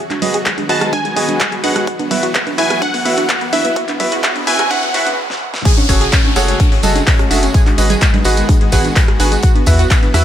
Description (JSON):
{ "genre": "progressive house", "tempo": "127 BPM", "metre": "4/4", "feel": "straight", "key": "unclear", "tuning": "A4 = 440 Hz", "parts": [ { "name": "supersaw pad", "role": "sustained chords", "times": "0.0-10.2 s", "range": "C#3 to F#4", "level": "-24 LUFS", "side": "equal", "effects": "sidechain pumping" }, { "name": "analog pluck", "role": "arpeggios", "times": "0.0-10.2 s", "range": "G#3 to A4", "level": "-22 LUFS", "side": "equal", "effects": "wide subtle chorus, cassette tape, sidechain pumping, ping-pong delay" }, { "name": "riser, noise sweep and downlifter", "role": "sound effects", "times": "0.1-9.4 s", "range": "none", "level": "-26 LUFS", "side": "equal", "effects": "none" }, { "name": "big-room dance drum kit", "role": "drums", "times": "0.1-10.2 s", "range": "crash cymbal, handclaps, hi-hat, snare drum", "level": "-20 LUFS", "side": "left 1 dB", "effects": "none" }, { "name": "electronic congas and rim click", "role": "percussion", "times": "0.1-10.2 s", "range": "none", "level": "-23 LUFS", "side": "right 5 dB", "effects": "sidechain pumping on perc, sidechain pumping on snare" }, { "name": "bright baby grand piano", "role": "stabs", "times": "0.2-10.2 s", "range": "E4 to G#5", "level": "-20 LUFS", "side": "right 2 dB", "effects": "sidechain pumping, low-pass filter, ping-pong delay" }, { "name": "round analog bass", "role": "bass", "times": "0.2-10.2 s", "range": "F#1 to E2", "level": "-16 LUFS", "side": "equal", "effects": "sidechain pumping, high-pass filter" }, { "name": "electronic kick drum", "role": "drums", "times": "0.5-10.0 s", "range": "none", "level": "-13 LUFS", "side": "equal", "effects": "high-pass filter on kick" }, { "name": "plucky unison lead", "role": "melody", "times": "0.7-5.2 s", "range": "E5 to A5", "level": "-20 LUFS", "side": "equal", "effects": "phaser, cassette tape, ping-pong delay" }, { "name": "vintage drum kit", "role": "drums", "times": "5.7-10.2 s", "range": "hi-hat, snare drum", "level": "-31 LUFS", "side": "left 4 dB", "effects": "none" }, { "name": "tambourine", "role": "percussion", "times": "5.7-10.2 s", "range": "none", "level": "-26 LUFS", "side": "right 3 dB", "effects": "none" } ], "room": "light reverb, small room ambience", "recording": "high-pass filter", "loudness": "-11 LUFS", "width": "side -10 dB against mid", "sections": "0.0-5.7 A section; 5.7-10.2 B section", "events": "build-up 0.0-5.7; filter sweep on synth pluck 0.0-5.7; filter sweep on grand piano 0.0-5.7; riser 0.1-5.2; noise sweep 3.8-5.7; stop 5.2-5.7; drum fill 5.3-5.7; drop 5.7-10.2", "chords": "0.0 G#m7; 1.9 Esus2; 3.8 C#m; 5.7 F#madd9; 7.5 G#m7; 9.4 Esus2" }